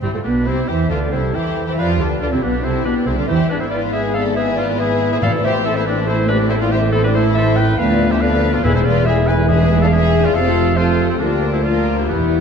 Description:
quick classical-period movement for symphony orchestra; 139 BPM; 4/4; straight; C major; A4 = 436 Hz
warm chamber violin section; melody; 0.0-12.4 s; Bb3 to B4; -27 LUFS; left 5 dB
clear clarinet; second line; 0.0-12.4 s; G4 to G#5; -23 LUFS; left 1 dB
flute section; second line; 0.0-12.4 s; E4 to E5; -27 LUFS; left 3 dB
rich studio violin section; second line; 0.0-12.4 s; G3 to F4; -28 LUFS; left 2 dB
warm oboe; second line; 0.0-12.4 s; Bb3 to B4; -27 LUFS; right 1 dB
dark studio viola section; accompaniment; 0.0-12.4 s; C3 to B3; -22 LUFS; equal
warm chamber double bass section; bass; 0.0-12.4 s; E1 to F2; -21 LUFS; right 3 dB
warm studio cello section; bass; 0.0-12.4 s; D2 to F3; -22 LUFS; right 3 dB
mellow French horn section; sustained chords; 0.9-12.4 s; D4 to B4; -24 LUFS; left 6 dB
timpani; percussion; 5.2-5.8, 8.6-12.4 s; E2 to A2; -22 LUFS; left 2 dB
wet scoring stage reverb, RT60 2.0 s; dark, warm production; -14 LUFS; side -6 dB against mid
0.0-12.4 A section
timpani fill 12.1-12.4
0.0 C; 1.8 G7; 3.5 E/G#; 5.2 Am; 7.8 Bdim/D; 8.6 E; 10.4 F; 11.2 Bb/D
| 0.03 0.46 0.90 1.34 | 1.77 2.21 2.64 3.07 | 3.50 3.94 4.37 4.80 | 5.23 5.66 6.08 6.51 | 6.94 7.36 7.79 8.22 | 8.65 9.07 9.50 9.93 | 10.35 10.78 11.21 11.65 | 12.10

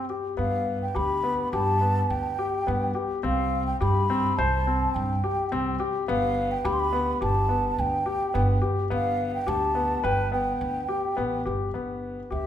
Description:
contemporary instrumental, chamber music in an uneven meter; 106 BPM; 5/4; straight; G mixolydian; A4 = 438 Hz
mellow hollow concert flute; melody; 0.0-12.5 s; E5 to C6; -28 LUFS; right 1 dB
clear grand piano; arpeggios; 0.0-12.5 s; B3 to C5; -28 LUFS; left 4 dB
upright bass; bass; 0.4-12.5 s; G1 to G2; -29 LUFS; right 1 dB
wet recital hall reverb, RT60 1.8 s; minimal, uncompressed stereo recording; -23 LUFS; side -10 dB against mid
0.4-11.7 A section
break 0.0-0.4
0.4 G; 3.2 C5; 6.1 G
| 0.39 0.96 1.53 2.10 2.67 | 3.24 3.81 4.38 4.94 5.51 | 6.08 6.65 7.21 7.78 8.35 | 8.91 9.48 10.05 10.61 11.18 | 11.75 12.31

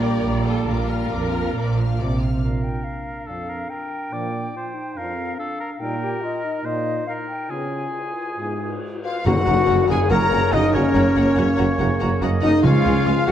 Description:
cinematic, heroic adventure film score; 141 BPM; 4/4; straight; Bb major, F# major from 9.3 s; A4 = 438 Hz
rich symphonic violin section; melody; 0.0-2.2, 9.0-13.3 s; F4 to A#5; -30 LUFS; left 6 dB
warm symphonic violin section; second line; 0.0-2.4, 9.2-13.3 s; D5 to F6; -33 LUFS; left 4 dB
rich symphonic viola section; accompaniment; 0.0-2.2, 9.3-13.3 s; C#4 to D5; -29 LUFS; right 1 dB
mellow French horn section; sustained chords; 0.0-13.3 s; F3 to A#4; -24 LUFS; left 3 dB
warm trombone section; sustained chords; 0.0-13.3 s; F2 to A#3; -29 LUFS; right 1 dB
rich studio cello section; bass; 0.0-2.4, 9.3-13.3 s; C#2 to C3; -25 LUFS; right 2 dB
rich symphonic double bass section; bass; 0.0-2.4, 9.3-13.3 s; F#1 to C#2; -25 LUFS; right 2 dB
timpani; percussion; 0.7-1.3, 9.3-9.9, 12.6-13.2 s; F#2 to C#3; -24 LUFS; equal
mellow clarinet; second line; 2.4-13.3 s; C4 to A#4; -30 LUFS; left 1 dB
silver concert flute; second line; 2.4-13.3 s; C#5 to A#5; -29 LUFS; left 2 dB
warm oboe; second line; 2.4-13.3 s; Ab4 to E#5; -31 LUFS; right 1 dB
cymbal swell and tam-tam; percussion; 5.8-10.9 s; -32 LUFS; left 3 dB
warm trumpet; stabs; 9.0-13.3 s; C#4 to A#4; -27 LUFS; right 2 dB
dark tuba; bass; 9.3-13.3 s; F#1 to C#2; -26 LUFS; right 2 dB
moderate scoring stage reverb, RT60 1.5 s; dark, warm production; -19 LUFS; side -10 dB against mid
0.0-2.4 A section; 2.4-9.3 B section; 9.3-13.3 C section
band accent 9.3-9.7
0.0 Gm/Bb; 0.7 Bb; 5.8 Eb/Bb; 7.5 Db7; 9.3 F#; 12.6 C#
0.23 | 0.67 1.11 1.55 1.98 | 2.42 2.85 3.28 3.70 | 4.12 4.54 4.97 5.39 | 5.80 6.22 6.64 7.07 | 7.50 7.95 8.39 8.83 | 9.26 9.68 10.11 10.53 | 10.96 11.38 11.80 12.22 | 12.64 13.07

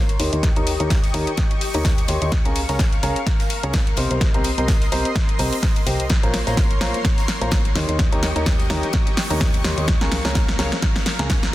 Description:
piano house; 127 BPM; 4/4; swing 56% on 16ths; A4 = 440 Hz
analog string pad; sustained chords; 0.0-11.5 s; G4 to Db6; -29 LUFS; left 1 dB; ensemble chorus, sidechain pumping
plucky analog bass; bass; 0.0-11.5 s; Bb1 to Eb2; -26 LUFS; equal; sidechain pumping
house drum kit; drums; 0.1-11.5 s; hi-hat, snare drum; -25 LUFS; equal
warm grand piano; riff; 0.2-11.3 s; Eb3 to C6; -25 LUFS; equal; sidechain pumping, low-pass filter, tape echo
big rock drum kit; drums; 0.2-11.4 s; hi-hat, ride cymbal, snare drum; -34 LUFS; left 2 dB; sidechain pumping on cymbals, high-pass filter on cymbals, sidechain pumping on hats, high-pass filter on hats, high-pass filter on snare, high-pass filter on room
electronic kick drum; drums; 0.4-11.4 s; -20 LUFS; equal
light reverb, small room ambience; dense, heavily limited modern master; -17 LUFS; side -15 dB against mid
0.0-11.5 A section
build-up 0.0-11.5; drum fill 0.0-11.5; filter sweep on grand piano 0.0-11.5
0.2 Eb7; 2.3 Db6; 4.0 Cm7; 6.1 Bbmadd9; 7.8 Eb7; 9.9 Db6
| 0.43 0.90 1.38 1.85 | 2.32 2.79 3.27 3.74 | 4.21 4.68 5.16 5.63 | 6.10 6.57 7.05 7.52 | 7.99 8.46 8.94 9.41 | 9.88 10.35 10.83 11.30

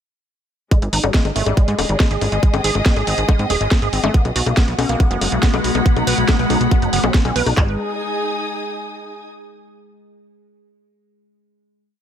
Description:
psychedelic trance; 140 BPM; 4/4; straight; A4 = 438 Hz
woody wave-folded pluck; riff; 0.7-7.8 s; G3 to B4; -24 LUFS; moving between left 2 dB and right 4 dB; chorus, auto-pan, sidechain pumping, digital delay
drum and bass drum kit; drums; 0.7-7.7 s; handclaps, kick drum; -15 LUFS; equal
drum and bass drum kit; drums; 0.7-7.5 s; bongos, hi-hat, snare drum; -22 LUFS; left 2 dB
muted studio string section; texture; 0.7-9.2 s; Ab3 to Eb6; -25 LUFS; left 1 dB; sidechain pumping
plucky analog bass; bass; 0.8-7.8 s; Eb1 to Ab2; -21 LUFS; equal
overtone-sweeping drone; sustained chords; 4.9-7.6 s; Ab3; -24 LUFS; left 2 dB; chorus, built-in reverb, sidechain pumping
light reverb, digital ambience; -15 LUFS; side -9 dB against mid
0.7-7.6 drop; 7.6-9.3 final chord
drop 0.7-7.6
0.7 Ab5; 4.1 B5; 7.6 Ab5
| 0.71 1.14 1.57 2.00 | 2.43 2.86 3.29 3.71 | 4.14 4.57 5.00 5.43 | 5.86 6.29 6.71 7.14 | 7.57 8.00 8.43 8.86

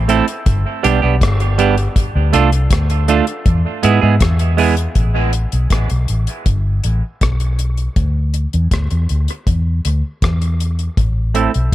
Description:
dub reggae; 80 BPM; 4/4; straight; A minor; A4 = 440 Hz
vintage muted fingered electric bass; bass; 0.0-11.7 s; G1 to G#2; -15 LUFS; equal
semi-hollow electric guitar; accompaniment; 0.1-4.7, 11.3-11.5 s; G3 to A4; -17 LUFS; right 7 dB; low-pass filter, dub echo
deep reggae drum kit; drums; 0.1-11.7 s; hi-hat, kick drum, rim click; -18 LUFS; left 1 dB
light reverb, small room ambience; echo-heavy mix; -13 LUFS; side -14 dB against mid
0.0-5.0 A section; 5.0-11.7 B section
break 5.0-11.0; filter sweep on clean electric guitar 5.0-11.7
0.5 G; 2.0 Dm; 3.5 E; 5.0 Asus2; 6.5 G; 8.0 Dsus2; 11.0 Am
0.47 1.21 | 1.96 2.71 3.46 4.21 | 4.96 5.71 6.46 7.21 | 7.96 8.71 9.46 10.22 | 10.97 11.72

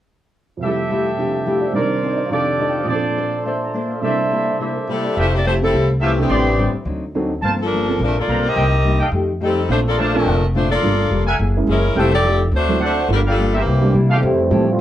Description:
jazz; 212 BPM; 4/4; swing 59% on 8ths; F major; A4 = 439 Hz
dark upright piano; accompaniment; 0.6-14.8 s; C2 to A5; -23 LUFS; right 3 dB
fingerpicked steel-string acoustic guitar; accompaniment; 0.6-14.7 s; G2 to D5; -24 LUFS; left 3 dB
mellow trumpet section; stabs; 0.6-14.2 s; F4 to C6; -21 LUFS; right 1 dB
clear saxophone section; melody; 4.9-14.0 s; E3 to Eb5; -19 LUFS; left 2 dB
upright bass; bass; 5.2-14.8 s; F1 to C3; -19 LUFS; equal
dark trombone section; second line; 14.1-14.8 s; E3 to F4; -18 LUFS; right 1 dB
moderate club reverb, RT60 0.6 s; worn, warbling old tape, cassette tape, warbly pitch drift; -16 LUFS; side -12 dB against mid
0.6-5.2 A section; 5.2-14.2 B section
0.6 Fmaj9; 1.8 Cm9; 2.3 F13; 2.9 Bbmaj9; 4.0 C13; 5.2 Fmaj9; 6.3 Am11; 6.9 D7b9; 7.4 Gm11; 8.6 Cm7; 9.1 F9; 9.7 Bbmaj7; 10.8 Gm9; 11.4 Gb9; 12.0 Fmaj9; 12.5 D7; 13.1 Gm7; 13.7 C7; 14.2 Fmaj9
| 0.62 0.90 1.19 1.47 | 1.75 2.04 2.32 2.60 | 2.89 3.17 3.46 3.74 | 4.02 4.31 4.59 4.87 | 5.16 5.44 5.72 6.01 | 6.29 6.57 6.86 7.14 | 7.42 7.71 7.99 8.28 | 8.56 8.84 9.12 9.41 | 9.69 9.97 10.26 10.54 | 10.82 11.11 11.39 11.67 | 11.95 12.24 12.52 12.80 | 13.09 13.37 13.65 13.93 | 14.22 14.50 14.78

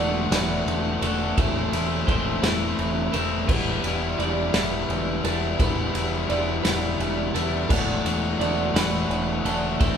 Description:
post-rock; 57 BPM (dotted quarters); 6/8; straight; A4 = 441 Hz
twelve-string electric guitar; arpeggios; 0.0-10.0 s; A4 to D5; -32 LUFS; right 4 dB
distorted electric guitar; riff; 0.0-10.0 s; E3 to F#4; -25 LUFS; left 3 dB; distortion
growling picked electric bass; bass; 0.0-10.0 s; E1; -28 LUFS; right 1 dB; overdrive
loose indie drum kit; drums; 0.3-10.0 s; crash cymbal, kick drum, ride cymbal, snare drum; -26 LUFS; right 1 dB
moderate large studio reverb, RT60 1.1 s; band playing live in one room; -21 LUFS; side -8 dB against mid
0.0-10.0 A section
0.0 D/E; 1.4 Am/E; 3.5 Em7; 7.7 D/E
0.32 | 1.37 2.42 | 3.48 4.53 | 5.59 6.64 | 7.70 8.75 | 9.80

